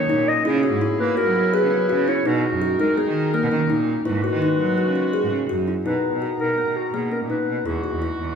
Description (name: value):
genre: contemporary instrumental, chamber music in an uneven meter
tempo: 167 BPM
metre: 5/4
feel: straight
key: B major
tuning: A4 = 440 Hz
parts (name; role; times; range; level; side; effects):
- mellow clarinet; melody; 0.0-8.0 s; F#4 to D#5; -23 LUFS; left 2 dB; none
- clear woodwind section; sustained chords; 0.0-8.4 s; C#3 to A#5; -30 LUFS; equal; none
- kalimba; arpeggios; 0.0-8.2 s; A#3 to G#4; -23 LUFS; left 1 dB; none
- clear cello; bass; 0.1-8.4 s; E2 to A#3; -25 LUFS; right 4 dB; none
room: moderate recital hall reverb, RT60 1.5 s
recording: minimal, uncompressed stereo recording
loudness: -19 LUFS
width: side -7 dB against mid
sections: 0.0-5.9 A section; 5.9-8.4 B section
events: none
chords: 0.5 C#m7; 2.3 Bmaj7; 4.1 G#m7; 5.9 Bmaj7; 7.7 Eadd9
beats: 0.10 | 0.46 0.82 1.18 1.54 1.90 | 2.26 2.62 2.98 3.34 3.70 | 4.06 4.42 4.78 5.14 5.50 | 5.86 6.22 6.58 6.94 7.30 | 7.66 8.02